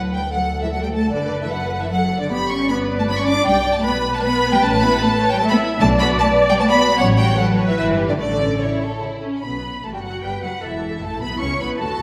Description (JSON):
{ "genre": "quick classical-period movement for string orchestra", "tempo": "152 BPM", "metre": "3/4", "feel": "rubato", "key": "unclear", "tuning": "A4 = 440 Hz", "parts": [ { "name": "warm symphonic violin section", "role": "melody", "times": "0.0-12.0 s", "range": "A3 to C#6", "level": "-30 LUFS", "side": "equal", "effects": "none" }, { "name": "warm studio viola section", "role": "accompaniment", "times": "0.0-11.9 s", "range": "E3 to E5", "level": "-25 LUFS", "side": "equal", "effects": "none" }, { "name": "dark studio cello section", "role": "bass", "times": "0.0-12.0 s", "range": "C#3 to B4", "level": "-25 LUFS", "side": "equal", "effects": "none" }, { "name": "warm studio double bass section", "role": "bass", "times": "0.0-12.0 s", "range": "E1 to D2", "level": "-27 LUFS", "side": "equal", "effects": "none" }, { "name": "rich studio violin section", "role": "second line", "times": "0.1-12.0 s", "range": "E4 to D6", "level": "-24 LUFS", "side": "equal", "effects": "none" } ], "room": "wet recital hall reverb, RT60 1.5 s", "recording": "none", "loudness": "-19 LUFS", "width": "mono", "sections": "0.0-9.4 A section; 9.4-12.0 B section", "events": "none", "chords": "0.0 D; 1.1 D/F#; 2.3 G; 3.5 G/B; 4.6 A; 5.8 Bm; 7.0 F#m/A; 7.8 Em/G; 8.2 A; 9.4 Gmaj9; 10.6 A/E" }